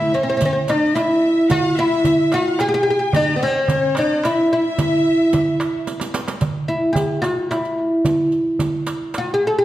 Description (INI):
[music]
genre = Arabic maqam ensemble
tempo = 110 BPM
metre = 3/4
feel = straight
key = E maqam huzam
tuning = A4 = 440 Hz
[part]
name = oud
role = melody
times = 0.0-9.6 s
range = B3+40c to A4-40c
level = -17 LUFS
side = equal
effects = tape echo
[part]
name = breathy ney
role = second line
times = 0.0-5.8 s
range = C#5-46c to G5+46c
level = -28 LUFS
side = left 6 dB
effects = none
[part]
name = clear studio violin section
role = second line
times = 0.0-5.8 s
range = C5+50c to G#5-50c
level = -26 LUFS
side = left 1 dB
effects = none
[part]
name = riq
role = percussion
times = 0.1-9.3 s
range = none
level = -31 LUFS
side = right 4 dB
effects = none
[part]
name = darbuka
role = percussion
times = 0.2-9.3 s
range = none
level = -24 LUFS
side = right 2 dB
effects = none
[sound]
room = wet recital hall reverb, RT60 1.5 s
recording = dark, warm production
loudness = -16 LUFS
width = side -14 dB against mid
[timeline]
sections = 0.0-6.4 A section; 6.4-9.6 B section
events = drum fill 5.9-6.4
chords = none